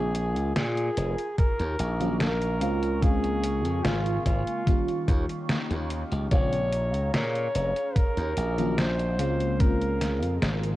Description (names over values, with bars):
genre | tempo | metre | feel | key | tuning
vaporwave | 73 BPM | 4/4 | straight | Bb minor | A4 = 442 Hz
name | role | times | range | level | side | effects
mellow flugelhorn | melody | 0.0-10.4 s | F4 to Db5 | -30 LUFS | equal | analog delay
warbly tape-like pad | sustained chords | 0.2-10.8 s | Db4 to Db6 | -37 LUFS | equal | chorus, built-in reverb, phaser
glassy slap bass | bass | 0.0-10.8 s | F1 to Bb2 | -28 LUFS | equal | tube saturation
detuned 8-bit digital drum machine | drums | 0.1-10.8 s | hi-hat, snare drum | -31 LUFS | equal | studio reverb
electronic kick drum | drums | 1.4-9.8 s | none | -23 LUFS | equal | studio reverb
FM electric piano with soft pad layer | accompaniment | 2.0-10.8 s | Db3 to F4 | -32 LUFS | equal | phaser, analog chorus
room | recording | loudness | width
light reverb | worn, warbling old tape, cassette tape, warbly pitch drift | -24 LUFS | side -16 dB against mid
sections
0.0-10.8 A section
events
none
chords
0.0 Bbm7; 1.4 Ebm9; 2.6 Bbm7/Db; 4.7 Eb9; 6.3 Bbm7; 8.0 Ebm9; 9.2 Bbm7/Db